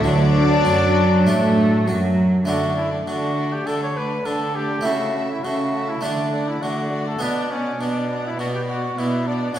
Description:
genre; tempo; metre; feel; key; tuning
classical, baroque-style concerto movement with solo episodes; 101 BPM; 4/4; straight; D major; A4 = 440 Hz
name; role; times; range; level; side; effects
clear trumpet; melody; 0.0-9.6 s; C#4 to C#5; -25 LUFS; left 1 dB; none
dark chamber violin section; melody; 0.0-9.6 s; D5 to A5; -32 LUFS; left 5 dB; none
rich chamber violin section; second line; 0.0-9.6 s; D4 to E5; -29 LUFS; left 3 dB; none
harpsichord; accompaniment; 0.0-9.6 s; B2 to F#4; -28 LUFS; equal; none
rich studio viola section; accompaniment; 0.0-9.6 s; F#3 to B3; -28 LUFS; right 1 dB; none
rich chamber double bass section; bass; 0.0-2.5 s; D2 to A2; -22 LUFS; right 2 dB; none
warm chamber cello section; bass; 0.0-9.6 s; A#2 to A3; -23 LUFS; right 1 dB; none
room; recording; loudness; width
wet recital hall reverb, RT60 1.7 s; heard from further back in the room; -18 LUFS; side -11 dB against mid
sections
0.0-2.5 A section; 2.5-9.6 B section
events
none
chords
0.0 D; 2.5 D5; 4.8 A/C#; 6.0 D; 7.2 Bm

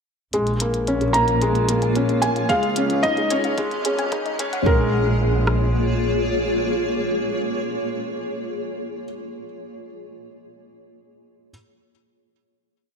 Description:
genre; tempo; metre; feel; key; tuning
piano and strings electronica; 111 BPM; 4/4; straight; Bb minor; A4 = 441 Hz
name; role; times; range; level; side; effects
granular cloud pad; sustained chords; 1.2-9.3 s; Bb3 to Db5; -25 LUFS; equal; built-in reverb, sidechain pumping
soft round pluck; arpeggios; 0.3-4.9 s; Ab4 to Ab5; -31 LUFS; equal; chorus, cassette tape, sidechain pumping, ping-pong delay
felt-muted upright piano; riff; 0.3-11.5 s; Ab3 to Eb4; -24 LUFS; left 1 dB; ping-pong delay
bright studio double bass section; bass; 0.3-6.2 s; Ab1 to Db2; -24 LUFS; equal; sidechain pumping
electronic hi-hat; drums; 0.3-4.6 s; none; -30 LUFS; equal; none
felt-muted upright piano; melody; 1.1-9.0 s; Bb4 to Bb5; -23 LUFS; right 1 dB; low-pass filter, ping-pong delay
deep house drum kit; drums; 2.5-5.6 s; kick drum, rim click; -22 LUFS; equal; none
room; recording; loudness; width
moderate lush hall reverb, RT60 1.7 s, small room ambience; high-pass filter; -19 LUFS; side -6 dB against mid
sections
0.3-4.7 build; 4.7-9.0 final chord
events
build-up 0.3-4.7; filter sweep on synth arpeggio sound 0.3-4.7; filter sweep on felt piano 0.3-4.7; filter sweep 0.3-4.7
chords
0.3 Bbm7; 2.5 Dbadd9; 3.6 Ab7sus4; 4.7 Bbm7

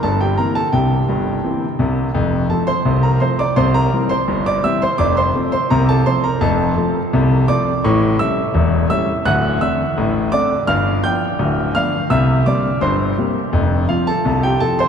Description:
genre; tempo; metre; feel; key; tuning
ragtime piano; 84 BPM; 2/4; straight; F major; A4 = 439 Hz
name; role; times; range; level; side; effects
clear grand piano; solo; 0.0-14.9 s; D1 to G6; -14 LUFS; equal; none
room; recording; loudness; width
wet cathedral reverb, RT60 6.4 s; in a vast, echoing space; -14 LUFS; side -7 dB against mid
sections
0.0-14.9 A section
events
none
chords
0.0 C7; 2.1 F; 3.6 C7; 5.0 F; 7.8 A7; 9.3 D7; 10.7 G7; 12.1 C7; 13.5 F

